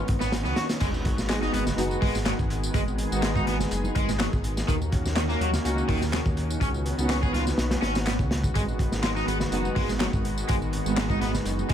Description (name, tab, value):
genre	breakbeat, breaks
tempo	124 BPM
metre	4/4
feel	straight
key	G# minor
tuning	A4 = 440 Hz
part	lush unison pad	sustained chords	0.0-11.7 s	D#3 to G#4	-32 LUFS	equal	chorus, sidechain pumping
part	dark detuned saw bass	bass	0.0-11.7 s	F#1 to D#2	-29 LUFS	equal	tube saturation
part	riser and sub drop	sound effects	0.0-2.7 s	none	-37 LUFS	equal	none
part	crunchy breakbeat drum kit	drums	0.1-11.7 s	crash cymbal, hi-hat, kick drum, snare drum	-28 LUFS	equal	none
part	raw garage guitar	riff	0.2-11.7 s	C#3 to G#4	-31 LUFS	equal	overdrive, vintage 12-bit sampler grit, digital delay
part	electronic tambourine and handclaps	drums	0.2-11.7 s	none	-38 LUFS	left 1 dB	none
part	congas	percussion	1.5-11.7 s	none	-38 LUFS	right 2 dB	none
part	muted studio string section	stabs	1.8-11.2 s	G#3 to F#4	-32 LUFS	right 2 dB	digital delay
room	small room reverb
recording	none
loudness	-23 LUFS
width	side -9 dB against mid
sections	0.8-11.7 A section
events	drop 0.8-11.7; impact 0.8-2.7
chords	0.0 C#9sus4; 0.8 G#m7; 4.7 D#m7; 6.6 C#9sus4; 8.6 G#m7